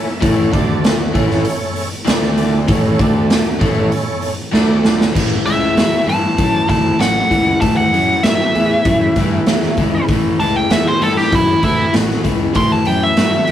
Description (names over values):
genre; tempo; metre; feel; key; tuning
blues rock power trio and southern rock; 97 BPM; 4/4; straight; A mixolydian; A4 = 440 Hz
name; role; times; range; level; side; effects
tonewheel organ; sustained chords; 0.0-5.1 s; A3 to E5; -22 LUFS; right 3 dB; slow rotary speaker, overdrive, chorus vibrato
overdriven electric guitar; riff; 0.2-13.5 s; A2 to D4; -18 LUFS; left 2 dB; none
fuzz picked electric bass; bass; 0.2-13.5 s; A1 to G2; -20 LUFS; equal; overdrive
raw garage drum kit; drums; 0.2-13.5 s; crash cymbal, hi-hat, kick drum, snare drum; -17 LUFS; equal; none
nasal lead guitar with a parked wah; melody; 5.5-13.5 s; E4 to C6; -17 LUFS; equal; overdrive
room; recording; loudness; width
moderate small room reverb, RT60 0.5 s; rough rehearsal-room recording; -12 LUFS; side -11 dB against mid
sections
0.0-5.1 A section; 5.1-13.5 B section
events
tonewheel organ fill 0.0; drum fill 4.5-5.1; lead electric guitar solo 5.1-13.5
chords
0.0 A; 0.5 D5; 1.1 A; 2.1 D5; 2.7 A; 3.0 D5; 3.6 A; 4.5 D5; 5.1 A